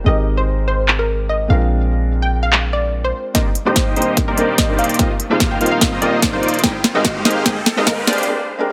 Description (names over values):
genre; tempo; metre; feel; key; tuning
future bass; 146 BPM; 4/4; half-time; C minor; A4 = 440 Hz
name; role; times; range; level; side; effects
felt-muted upright piano; accompaniment; 0.0-8.7 s; G3 to Bb4; -25 LUFS; equal; sidechain pumping, dub echo
warm 808-style bass; bass; 0.0-8.3 s; F1 to C2; -20 LUFS; equal; sidechain pumping, high-pass filter
unison pluck; melody; 0.1-8.3 s; Bb4 to G5; -25 LUFS; equal; sidechain pumping, delay
trap drum kit; drums; 0.9-8.3 s; handclaps, hi-hat, snare drum; -20 LUFS; equal; overdrive, low-pass filter on snare, low-pass filter on hats, low-pass filter on room
dense compressed supersaw; riff; 3.3-8.3 s; Ab3 to F5; -22 LUFS; equal; sidechain pumping, low-pass filter
electronic kick drum; drums; 3.3-8.0 s; none; -23 LUFS; equal; none
riser; sound effects; 5.2-8.3 s; none; -31 LUFS; equal; none
room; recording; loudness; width
light reverb, digital ambience; high-pass filter; -17 LUFS; mono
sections
0.0-3.3 A section; 3.3-8.7 B section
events
build-up 3.3-8.7; drum fill 3.3-8.3; filter sweep on supersaw synth 3.3-8.7; break 8.3-8.7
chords
0.1 Abmaj7; 1.5 Bb7; 3.3 Cm9; 5.0 F7sus4; 6.6 Abmaj7; 8.1 Bb7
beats
| 0.06 0.47 0.88 1.29 | 1.71 2.12 2.53 2.94 | 3.35 3.76 4.17 4.58 | 4.99 5.40 5.81 6.22 | 6.64 7.05 7.46 7.87 | 8.28 8.69